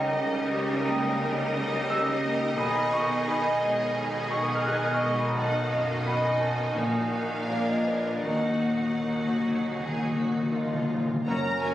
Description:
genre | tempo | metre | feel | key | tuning
classical, romantic movement for piano and orchestra | 76-90 BPM | 4/4 | rubato | Eb minor | A4 = 438 Hz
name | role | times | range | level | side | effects
rich studio violin section | melody | 0.0-11.7 s | Bb4 to A#5 | -38 LUFS | left 2 dB | none
warm concert grand piano | melody | 0.0-11.7 s | Bb1 to Ab6 | -28 LUFS | left 1 dB | none
warm symphonic violin section | second line | 0.0-11.7 s | F4 to Eb5 | -32 LUFS | equal | none
clear symphonic viola section | accompaniment | 0.0-11.7 s | Eb3 to Eb4 | -34 LUFS | equal | none
bright symphonic double bass section | bass | 0.0-11.7 s | F#1 to Eb2 | -34 LUFS | equal | none
clear symphonic cello section | bass | 0.0-11.7 s | Eb2 to Db3 | -33 LUFS | right 1 dB | none
timpani | percussion | 6.8-11.2 s | Bb2 to Eb3 | -34 LUFS | equal | none
clear oboe | second line | 11.3-11.7 s | A#4 | -32 LUFS | equal | none
mellow hollow silver concert flute | second line | 11.3-11.7 s | G#5 to A#5 | -35 LUFS | left 2 dB | none
warm clarinet | second line | 11.3-11.7 s | C#4 | -38 LUFS | left 2 dB | none
warm bassoon | accompaniment | 11.3-11.7 s | F#3 | -32 LUFS | right 4 dB | none
mellow French horn section | sustained chords | 11.3-11.7 s | F#3 to C#4 | -38 LUFS | right 1 dB | none
clear trumpet | stabs | 11.3-11.7 s | A#4 | -35 LUFS | right 1 dB | none
room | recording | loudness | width
moderate scoring stage reverb, RT60 1.8 s | recorded on a phone in the room, studio reverb | -24 LUFS | side -13 dB against mid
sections
0.0-11.3 A section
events
timpani fill 8.2-11.3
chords
0.0 Eb7/Db; 2.6 Abm/Cb; 6.8 Ebm/Bb; 7.5 Bb7; 8.2 Ebm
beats
0.49 1.23 1.91 | 2.59 3.28 3.98 4.67 | 5.37 6.07 6.77 7.49 | 8.25 9.04 9.80 10.52 | 11.27

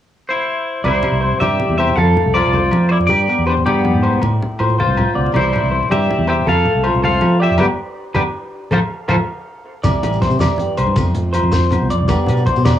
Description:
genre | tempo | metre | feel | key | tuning
highlife guitar band | 107 BPM (dotted quarters) | 12/8 | straight | C major | A4 = 440 Hz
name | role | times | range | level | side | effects
clean electric guitar | melody | 0.3-9.2 s | B3 to F5 | -18 LUFS | left 1 dB | analog chorus, cassette tape
electric guitar through a small old amp | arpeggios | 0.8-12.8 s | G4 to F5 | -20 LUFS | right 1 dB | spring reverb, tape echo
fingered electric bass | bass | 0.8-12.7 s | G1 to F3 | -18 LUFS | right 1 dB | none
agogo bells | percussion | 0.8-12.8 s | none | -28 LUFS | left 6 dB | none
congas | percussion | 0.8-12.7 s | none | -23 LUFS | left 1 dB | none
nylon-string guitar | accompaniment | 0.9-12.8 s | E2 to G4 | -22 LUFS | left 3 dB | none
damped 70s drum kit | drums | 9.8-12.7 s | hi-hat, kick drum, snare drum | -22 LUFS | equal | cassette tape
shekere | percussion | 9.8-12.7 s | none | -24 LUFS | right 1 dB | none
room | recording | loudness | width
light reverb | home recording on cassette, small room ambience | -14 LUFS | side -11 dB against mid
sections
0.8-9.8 A section; 9.8-12.8 B section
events
band accent 7.6-9.8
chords
0.0 N.C.; 0.8 C; 2.0 F; 3.1 G; 4.2 F/A; 5.3 C; 6.5 F; 7.6 G; 8.7 F/A; 9.8 C; 11.0 F; 12.1 G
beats
0.28 | 0.85 1.41 1.97 2.54 | 3.10 3.66 4.22 4.78 | 5.35 5.91 6.47 7.03 | 7.59 8.16 8.72 9.28 | 9.84 10.40 10.96 11.52 | 12.08 12.64

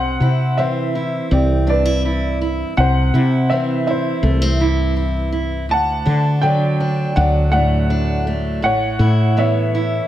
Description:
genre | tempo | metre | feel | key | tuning
folk | 82 BPM | 4/4 | straight | unclear | A4 = 440 Hz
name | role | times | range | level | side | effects
warm baby grand piano | melody | 0.0-10.1 s | G4 to A5 | -20 LUFS | equal | none
fingerpicked steel-string acoustic guitar | accompaniment | 0.0-10.1 s | D2 to G4 | -21 LUFS | right 1 dB | none
woody fretless electric bass | bass | 0.0-10.0 s | A1 to D3 | -18 LUFS | equal | none
room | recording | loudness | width
moderate recital hall reverb, RT60 1.4 s | none | -15 LUFS | side -12 dB against mid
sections
0.0-10.1 A section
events
none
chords
0.0 C; 5.7 D; 8.6 Aadd9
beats
0.58 1.31 2.04 | 2.77 3.50 4.23 4.96 | 5.69 6.42 7.16 7.89 | 8.62 9.36

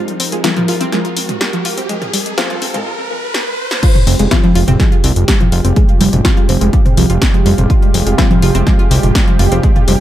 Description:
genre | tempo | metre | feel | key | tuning
melodic techno | 124 BPM | 4/4 | straight | F minor | A4 = 442 Hz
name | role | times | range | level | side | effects
lush unison pad | sustained chords | 0.0-10.0 s | C3 to Bb4 | -20 LUFS | right 2 dB | chorus, sidechain pumping
analog pluck | arpeggios | 0.0-10.0 s | F3 to F5 | -18 LUFS | equal | chorus, sidechain pumping, tape echo
riser | sound effects | 0.0-3.8 s | none | -23 LUFS | equal | none
punchy analog drum machine | drums | 0.1-10.0 s | crash cymbal, hi-hat, snare drum, toms | -18 LUFS | equal | overdrive, sidechain pumping on hats, sidechain pumping on toms, sidechain pumping on cymbals
filtered dub chord stab | stabs | 0.4-10.0 s | F3 to F4 | -23 LUFS | left 5 dB | chorus, sidechain pumping, tape echo
electronic kick drum | drums | 3.8-9.7 s | none | -12 LUFS | equal | none
fat analog bass | bass | 4.1-10.0 s | F1 to C2 | -13 LUFS | equal | sidechain pumping
room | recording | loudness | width
light reverb, digital ambience | echo-heavy mix, high-pass filter | -10 LUFS | side -13 dB against mid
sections
0.0-3.8 A section; 3.8-10.0 B section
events
build-up 0.0-3.8; riser 0.0-3.8; filter sweep on synth stab 0.0-3.8; filter sweep on analog synth pad 0.0-3.8; drum fill 3.3-3.8; drop 3.8-10.0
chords
0.0 Fmadd9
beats
0.44 0.93 1.41 | 1.89 2.38 2.86 3.35 | 3.83 4.31 4.80 5.28 | 5.76 6.25 6.73 7.22 | 7.70 8.18 8.67 9.15 | 9.63

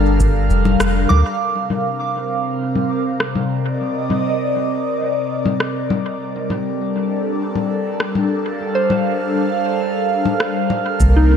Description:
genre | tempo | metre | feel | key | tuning
ambient dub | 100 BPM | 4/4 | straight | C dorian | A4 = 440 Hz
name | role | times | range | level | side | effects
airy breathy pad | sustained chords | 0.0-11.4 s | C3 to F5 | -19 LUFS | equal | chorus, phaser
soft synth bell | arpeggios | 0.0-11.4 s | D4 to D6 | -24 LUFS | right 2 dB | chorus, dub echo
soft dub sub bass | bass | 0.0-1.2, 11.0-11.4 s | F1 to D2 | -14 LUFS | equal | none
electronic kick drum | drums | 0.2-0.3, 11.0-11.1 s | none | -19 LUFS | equal | studio reverb
electronic shaker, congas and rim click | drums | 0.2-11.1 s | none | -23 LUFS | left 4 dB | overdrive, low-pass filter on perc, studio reverb, low-pass filter on snare, dub echo
bubbling stepped-filter texture | texture | 11.1-11.4 s | Bb3 to Bb4 | -23 LUFS | right 2 dB | chorus, built-in reverb
room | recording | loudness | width
moderate echo chamber reverb, RT60 2.1 s | none | -16 LUFS | side -8 dB against mid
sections
0.0-1.4 A section; 1.4-11.0 B section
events
band accent 0.8-1.1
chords
0.0 Gm9; 1.4 Cm9; 6.2 Gm9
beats
0.20 0.80 | 1.40 2.00 2.60 3.20 | 3.80 4.40 5.00 5.60 | 6.20 6.80 7.40 8.00 | 8.60 9.20 9.80 10.40 | 11.00

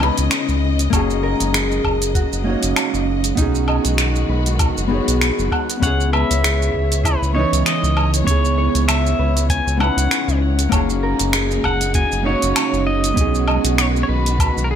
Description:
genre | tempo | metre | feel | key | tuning
sunset chillout | 98 BPM | 4/4 | swing 56% on 16ths | F# mixolydian | A4 = 440 Hz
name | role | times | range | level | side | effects
nylon-string guitar | accompaniment | 0.0-14.7 s | E3 to D#5 | -22 LUFS | moving between left 8 dB and right 10 dB | auto-pan, digital delay
warm studio string section | sustained chords | 0.0-14.8 s | C#3 to D#5 | -27 LUFS | left 2 dB | none
concert harp | arpeggios | 0.0-14.8 s | D#4 to F#5 | -27 LUFS | equal | digital delay
round analog bass | bass | 0.0-14.8 s | F#1 to C#2 | -20 LUFS | equal | none
deep house drum kit | drums | 0.0-14.7 s | finger snaps, hi-hat, shaker, woodblock | -22 LUFS | right 1 dB | gated reverb
electronic kick drum | drums | 0.9-14.5 s | none | -21 LUFS | equal | none
pedal steel guitar | melody | 5.8-14.8 s | G#4 to G#5 | -23 LUFS | left 1 dB | digital delay
room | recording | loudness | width
light reverb | bright 1980s-style digital production | -15 LUFS | side -9 dB against mid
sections
0.0-14.8 A section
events
none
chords
0.0 C#m9; 0.9 F#69; 3.4 B6; 5.8 C#m9; 10.7 F#69; 13.2 B6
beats
0.32 | 0.93 1.54 2.15 2.77 | 3.38 3.99 4.60 5.21 | 5.83 6.44 7.05 7.66 | 8.28 8.89 9.50 10.11 | 10.72 11.34 11.95 12.56 | 13.17 13.79 14.40

